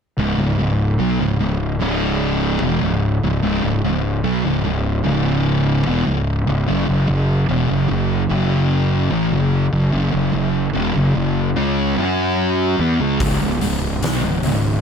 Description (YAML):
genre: stoner and doom metal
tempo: 74 BPM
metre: 4/4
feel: straight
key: C# minor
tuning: A4 = 439 Hz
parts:
  - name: thick fuzz guitar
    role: riff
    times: 0.2-14.8 s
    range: C#2 to F#4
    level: -17 LUFS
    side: equal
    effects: distortion
  - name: fuzz fingered electric bass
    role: bass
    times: 0.2-14.8 s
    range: C#1 to F#2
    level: -22 LUFS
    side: equal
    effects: overdrive, tube saturation
  - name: oversized low-tuned drum kit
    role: drums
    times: 13.2-14.6 s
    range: hi-hat, kick drum, snare drum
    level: -22 LUFS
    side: equal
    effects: none
room: moderate large studio reverb, RT60 1.1 s, small room ambience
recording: none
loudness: -16 LUFS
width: side -6 dB against mid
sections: 0.2-14.8 A section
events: none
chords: 0.2 C#5; 6.7 F#5; 13.2 C#5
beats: | 0.19 1.00 1.81 2.62 | 3.44 4.25 5.06 5.87 | 6.68 7.50 8.31 9.12 | 9.94 10.76 11.57 12.39 | 13.21 14.03